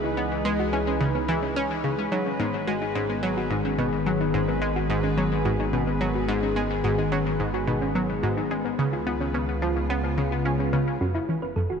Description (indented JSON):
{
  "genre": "ambient, sequencer-driven space music",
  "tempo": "108 BPM",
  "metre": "4/4",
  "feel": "straight",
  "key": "unclear",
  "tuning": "A4 = 438 Hz",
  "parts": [
    { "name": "evolving wavetable pad", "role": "sustained chords", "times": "0.0-11.8 s", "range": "C#3 to G#4", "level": "-27 LUFS", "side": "left 2 dB", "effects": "chorus, built-in reverb" },
    { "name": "thumb-piano-like synth pluck", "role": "arpeggios", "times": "0.0-11.8 s", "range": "G#3 to C#5", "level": "-31 LUFS", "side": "moving between left 1 dB and right 5 dB", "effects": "chorus, auto-pan, ping-pong delay" },
    { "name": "fat analog bass", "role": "bass", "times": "0.0-11.8 s", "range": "F#1 to C#2", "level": "-33 LUFS", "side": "equal", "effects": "none" },
    { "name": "bubbling stepped-filter texture", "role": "texture", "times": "0.0-11.0 s", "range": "B4", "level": "-37 LUFS", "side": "right 3 dB", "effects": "chorus, built-in reverb" },
    { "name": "analog pluck", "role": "riff", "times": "0.2-11.7 s", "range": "F#2 to C#4", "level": "-27 LUFS", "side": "equal", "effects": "chorus, ping-pong delay" }
  ],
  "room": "wet lush hall reverb, RT60 2.7 s",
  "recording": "nothing above 10.5 kHz",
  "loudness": "-23 LUFS",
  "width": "side -6 dB against mid",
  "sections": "0.0-11.0 A section",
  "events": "filter sweep on synth arpeggio sound 0.0-11.0",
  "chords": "0.0 C#m; 2.1 G#m; 8.8 C#7; 11.0 F#m"
}